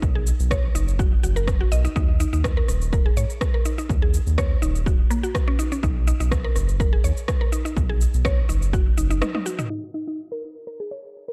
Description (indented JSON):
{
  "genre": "afro house",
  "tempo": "124 BPM",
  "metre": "4/4",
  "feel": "swing 53% on 16ths",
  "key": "unclear",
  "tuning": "A4 = 439 Hz",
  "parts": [
    { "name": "round analog bass", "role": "bass", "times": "0.0-9.2 s", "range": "Eb1 to Ab2", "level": "-25 LUFS", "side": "equal", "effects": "sidechain pumping" },
    { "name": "electronic kick drum", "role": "drums", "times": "0.0-8.8 s", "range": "none", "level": "-24 LUFS", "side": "equal", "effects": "overdrive" },
    { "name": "house drum kit", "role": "drums", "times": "0.0-11.3 s", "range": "rim click, shaker, toms", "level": "-34 LUFS", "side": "equal", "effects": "overdrive" },
    { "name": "mallet-like synth pluck", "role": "arpeggios", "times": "0.2-11.3 s", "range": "Bb3 to D#5", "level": "-32 LUFS", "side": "equal", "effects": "chorus, sidechain pumping, dub echo" }
  ],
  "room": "little or no reverb",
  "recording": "dark, warm production, low-pass filter",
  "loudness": "-22 LUFS",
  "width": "mono",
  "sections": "0.0-9.7 A section; 9.7-11.3 B section",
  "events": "break 9.2-9.7; drum fill 9.2-9.7",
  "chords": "0.0 B; 2.0 N.C.; 5.8 B; 9.7 Eb5"
}